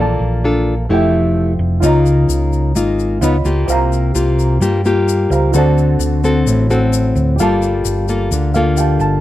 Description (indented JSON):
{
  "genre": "bossa nova",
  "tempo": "130 BPM",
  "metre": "4/4",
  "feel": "straight",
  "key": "unclear",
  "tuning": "A4 = 438 Hz",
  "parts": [
    { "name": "nylon-string guitar", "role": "accompaniment", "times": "0.0-9.2 s", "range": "A2 to A4", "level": "-15 LUFS", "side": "left 2 dB", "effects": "none" },
    { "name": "warm baby grand piano", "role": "accompaniment", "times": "0.0-9.2 s", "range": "F4 to Cb6", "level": "-22 LUFS", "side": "right 4 dB", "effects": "none" },
    { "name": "hollow-body short-scale fingered electric bass", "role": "bass", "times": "0.0-9.2 s", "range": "F1 to G2", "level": "-16 LUFS", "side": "equal", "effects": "none" },
    { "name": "tube shaker", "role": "percussion", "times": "1.8-9.2 s", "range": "none", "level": "-29 LUFS", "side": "left 11 dB", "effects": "none" }
  ],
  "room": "light reverb",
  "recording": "close, detailed microphones",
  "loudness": "-12 LUFS",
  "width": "side -14 dB against mid",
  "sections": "0.0-1.8 A section; 1.8-9.2 B section",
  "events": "grand piano fill 8.3-9.2",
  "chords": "0.0 Bbmaj7; 0.9 Fmaj9; 1.8 Db69; 3.2 Db9; 3.7 C7sus4; 5.5 D7; 7.4 Gm9"
}